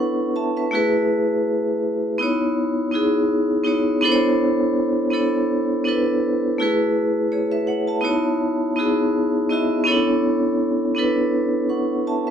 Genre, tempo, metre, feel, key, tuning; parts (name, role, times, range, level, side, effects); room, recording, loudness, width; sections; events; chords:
hip hop; 82 BPM; 4/4; swing 56% on 16ths; B dorian; A4 = 441 Hz
vibraphone with hard mallets; solo; 0.0-12.3 s; A3 to C#6; -18 LUFS; equal
wet studio reverb, RT60 0.6 s; rough home demo mix; -18 LUFS; side -8 dB against mid
0.0-12.3 A section
0.0 Bm11; 0.7 F#m11; 2.2 C#m11; 4.0 Bm11; 6.6 F#m11; 8.0 C#m11; 9.9 Bm11